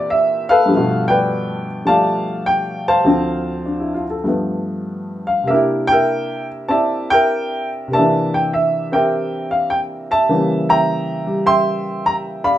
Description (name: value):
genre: solo jazz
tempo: 101 BPM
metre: 4/4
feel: swing 68% on 8ths, rubato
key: unclear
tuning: A4 = 440 Hz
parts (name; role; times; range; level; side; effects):
- warm upright piano; solo; 0.0-12.6 s; D2 to C6; -15 LUFS; equal; none
room: moderate studio reverb, RT60 0.6 s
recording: minimal, uncompressed stereo recording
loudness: -15 LUFS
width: side -12 dB against mid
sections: 0.0-12.6 A section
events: none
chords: 0.0 C9; 0.7 G9; 3.1 Dm7; 4.3 G9; 5.5 C9; 10.3 C#dim7